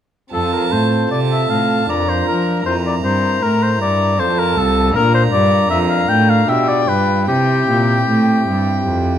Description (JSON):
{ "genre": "classical, baroque-style sonata movement with continuo", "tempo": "77 BPM", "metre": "3/4", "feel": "straight", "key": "F major", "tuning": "A4 = 440 Hz", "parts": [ { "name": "warm oboe", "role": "melody", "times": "0.3-9.2 s", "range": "G4 to G5", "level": "-18 LUFS", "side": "left 4 dB", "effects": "none" }, { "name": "warm violin", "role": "second line", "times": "0.3-9.2 s", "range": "G5 to Bb5", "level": "-23 LUFS", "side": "right 4 dB", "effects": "none" }, { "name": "pipe organ, flutes", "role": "accompaniment", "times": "0.3-9.2 s", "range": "C2 to Bb4", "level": "-19 LUFS", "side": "equal", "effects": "none" }, { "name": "rich cello", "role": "bass", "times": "0.3-9.2 s", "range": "C2 to F3", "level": "-18 LUFS", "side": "right 1 dB", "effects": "none" } ], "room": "moderate recital hall reverb, RT60 1.3 s", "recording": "dark, warm production", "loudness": "-13 LUFS", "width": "side -10 dB against mid", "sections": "0.3-9.2 A section", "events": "none", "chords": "0.3 F; 1.9 Bb/F; 2.7 C7/F; 4.2 F; 4.9 Bb; 6.5 G7/B; 7.3 C", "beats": "| 0.34 1.11 1.89 | 2.66 3.43 4.19 | 4.95 5.71 6.49 | 7.29 8.09 8.88" }